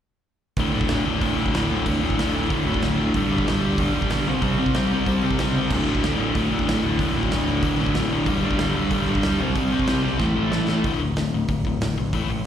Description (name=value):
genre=punk rock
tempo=187 BPM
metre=4/4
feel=straight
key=unclear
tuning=A4 = 440 Hz
part: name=overdriven electric guitar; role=riff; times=0.6-12.4 s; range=D2 to C4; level=-24 LUFS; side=left 8 dB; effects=slapback echo
part: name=overdriven semi-hollow guitar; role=riff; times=0.6-10.8 s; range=D2 to C4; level=-24 LUFS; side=right 6 dB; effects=none
part: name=growling picked electric bass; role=bass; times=0.6-12.4 s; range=D1 to C#2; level=-28 LUFS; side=equal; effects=overdrive
part: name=big rock drum kit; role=drums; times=0.6-12.2 s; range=crash cymbal, hi-hat, kick drum, snare drum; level=-27 LUFS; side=right 1 dB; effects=none
room=light reverb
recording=live gig heard through the venue's PA, recital hall reverb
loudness=-20 LUFS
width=side -9 dB against mid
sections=0.6-10.8 A section; 10.8-12.5 B section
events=drum fill 10.2-10.8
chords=0.6 D5; 3.1 G5/D; 4.3 C5; 5.7 D5; 8.3 G5/D; 9.4 C5; 10.2 A5; 10.8 D5